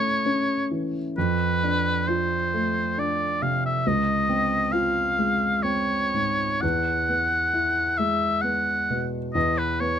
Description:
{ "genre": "classical, impressionist duo for oboe and grand piano", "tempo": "66 BPM", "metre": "3/4", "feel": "rubato", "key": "unclear", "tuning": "A4 = 439 Hz", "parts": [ { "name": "clear oboe", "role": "melody", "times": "0.0-10.0 s", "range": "Cb5 to F#5", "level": "-24 LUFS", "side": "equal", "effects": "none" }, { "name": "dark grand piano", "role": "accompaniment", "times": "0.0-10.0 s", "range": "Db2 to F4", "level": "-25 LUFS", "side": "right 1 dB", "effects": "none" } ], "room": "little or no reverb", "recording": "close, detailed microphones", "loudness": "-22 LUFS", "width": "side -9 dB against mid", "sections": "0.0-10.0 A section", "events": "none", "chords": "0.0 A; 1.2 F6; 3.8 Dbmaj7; 6.6 Eadd9; 9.4 Cbadd9/Fb", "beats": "0.25 | 1.16 2.06 2.96 | 3.83 4.72 5.63 | 6.63 7.54 8.44 | 9.36" }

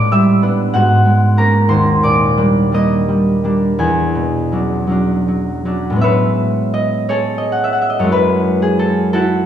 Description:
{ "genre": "classical, solo harp piece", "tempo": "52-64 BPM (dotted quarters)", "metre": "6/8", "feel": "rubato", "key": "unclear", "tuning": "A4 = 440 Hz", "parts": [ { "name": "concert harp", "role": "solo", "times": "0.0-9.5 s", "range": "D#2 to E6", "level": "-12 LUFS", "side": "equal", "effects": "none" } ], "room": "wet recital hall reverb, RT60 1.6 s", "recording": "heard from further back in the room", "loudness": "-12 LUFS", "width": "side -10 dB against mid", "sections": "0.0-6.0 A section; 6.0-9.5 B section", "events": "none", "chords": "0.0 A9sus4; 0.7 G#m11; 1.7 D#maj7; 3.8 E13; 6.0 Amaj9; 8.1 F#m9", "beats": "0.73 | 1.69 2.72 | 3.79 4.90 | 6.03 7.08 | 8.12 9.13" }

